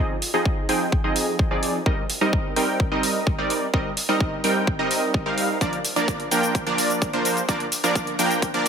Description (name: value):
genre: EDM, festival progressive house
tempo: 128 BPM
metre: 4/4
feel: straight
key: C minor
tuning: A4 = 441 Hz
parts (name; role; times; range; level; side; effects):
- supersaw stab; riff; 0.0-8.7 s; F3 to G5; -22 LUFS; right 1 dB; sidechain pumping, low-pass filter, ping-pong delay
- fat analog bass; bass; 0.0-8.7 s; Bb1 to F2; -40 LUFS; equal; none
- electronic hi-hat and shaker; drums; 0.2-8.7 s; none; -27 LUFS; equal; overdrive
- electronic kick drum; drums; 0.5-8.5 s; none; -24 LUFS; equal; overdrive
room: moderate lush hall reverb, RT60 1.8 s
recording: high-pass filter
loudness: -20 LUFS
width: side -7 dB against mid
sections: 0.0-8.7 A section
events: build-up 0.0-8.7; filter sweep on supersaw synth 0.0-8.7; filter sweep 0.0-8.7; drum fill 5.6-8.7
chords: 0.0 Fm7; 1.9 Cm7; 5.6 Bb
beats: 0.46 0.92 1.39 | 1.86 2.33 2.80 3.27 | 3.74 4.21 4.67 5.14 | 5.61 6.08 6.55 7.02 | 7.49 7.96 8.42